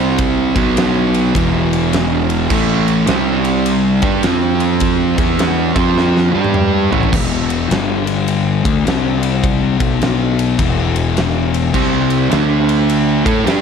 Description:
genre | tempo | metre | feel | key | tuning
stoner and doom metal | 104 BPM | 4/4 | swing 64% on 8ths | E minor | A4 = 440 Hz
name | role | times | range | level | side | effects
fuzz guitar | riff | 0.0-7.1, 11.7-13.6 s | E2 to A4 | -16 LUFS | right 12 dB | distortion
thick fuzz guitar | riff | 0.0-13.6 s | E2 to A4 | -17 LUFS | left 10 dB | distortion
fuzz fingered electric bass | bass | 0.0-13.6 s | E1 to A2 | -20 LUFS | equal | overdrive
big rock drum kit | drums | 0.2-13.6 s | crash cymbal, kick drum, ride cymbal, snare drum, toms | -19 LUFS | equal | none
room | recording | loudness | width
studio reverb | none | -12 LUFS | side -6 dB against mid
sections
0.0-7.1 A section; 7.1-13.6 B section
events
drum fill 6.0-7.1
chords
0.5 B5; 1.4 E5; 2.5 A5; 3.1 C5; 3.9 G5; 4.2 F5; 5.1 E5; 5.7 F5; 6.3 G5; 6.8 A5; 7.1 E5; 7.7 G5; 8.6 D5; 8.9 C5; 9.7 B5; 10.6 E5; 11.7 C5; 12.3 D5; 13.2 A5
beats
| 0.20 0.77 1.35 1.93 | 2.50 3.08 3.66 4.24 | 4.81 5.39 5.97 6.55 | 7.12 7.70 8.28 8.86 | 9.43 10.01 10.58 11.16 | 11.73 12.31 12.89 13.46

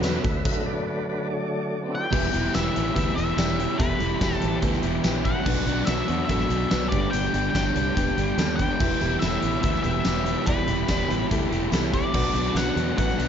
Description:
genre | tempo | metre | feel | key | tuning
classic rock | 144 BPM | 4/4 | straight | E minor | A4 = 440 Hz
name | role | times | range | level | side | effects
clear upright piano | accompaniment | 0.0-13.3 s | D4 to D5 | -36 LUFS | right 1 dB | none
tonewheel organ | sustained chords | 0.0-13.3 s | D3 to E5 | -34 LUFS | equal | none
crunchy overdriven guitar | riff | 0.0-13.3 s | B2 to G4 | -28 LUFS | left 11 dB | none
overdriven semi-hollow guitar | riff | 0.0-13.3 s | E2 to G4 | -28 LUFS | right 12 dB | none
fingered electric bass | bass | 0.0-13.3 s | E1 to E2 | -29 LUFS | equal | none
huge arena drum kit | drums | 0.0-13.3 s | crash cymbal, hi-hat, kick drum, snare drum, tambourine | -27 LUFS | equal | none
tambourine | percussion | 0.0-12.7 s | none | -44 LUFS | left 7 dB | none
octave-fuzz lead guitar | melody | 1.9-13.3 s | B4 to G5 | -29 LUFS | left 2 dB | distortion
room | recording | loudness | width
light reverb, studio ambience | nothing above 7.6 kHz | -22 LUFS | side -8 dB against mid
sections
0.0-2.1 A section; 2.1-13.3 B section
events
tonewheel organ solo 0.0-2.1; stop 0.5-2.1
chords
0.2 D; 2.1 Em; 5.5 Bm; 6.9 G; 8.8 Em; 12.1 Bm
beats
0.03 | 0.45 0.87 1.28 1.70 | 2.12 2.54 2.95 3.37 | 3.79 4.21 4.62 5.04 | 5.46 5.88 6.29 6.71 | 7.13 7.54 7.96 8.38 | 8.80 9.21 9.63 10.05 | 10.47 10.89 11.30 11.72 | 12.14 12.56 12.98

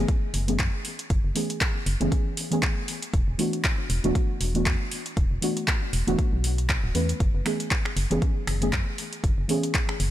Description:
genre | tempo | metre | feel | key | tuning
deep house | 118 BPM | 4/4 | swing 56% on 16ths | F# minor | A4 = 439 Hz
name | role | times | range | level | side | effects
deep mellow chord stab | stabs | 0.0-10.1 s | E3 to B4 | -28 LUFS | equal | chorus, sidechain pumping, ping-pong delay
organ-like FM bass | bass | 0.0-10.1 s | D1 to F#2 | -27 LUFS | equal | sidechain pumping
deep house drum kit | drums | 0.1-10.1 s | finger snaps, handclaps, hi-hat | -30 LUFS | equal | none
electronic kick drum | drums | 0.1-9.9 s | none | -25 LUFS | equal | none
room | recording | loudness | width
digital ambience | none | -23 LUFS | side -13 dB against mid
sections
0.0-10.1 A section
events
none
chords
0.0 F#m11; 3.1 E9sus4; 7.2 F#m11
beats
0.09 0.59 | 1.10 1.61 2.12 2.63 | 3.14 3.64 4.15 4.66 | 5.17 5.68 6.19 6.70 | 7.20 7.71 8.22 8.73 | 9.24 9.75

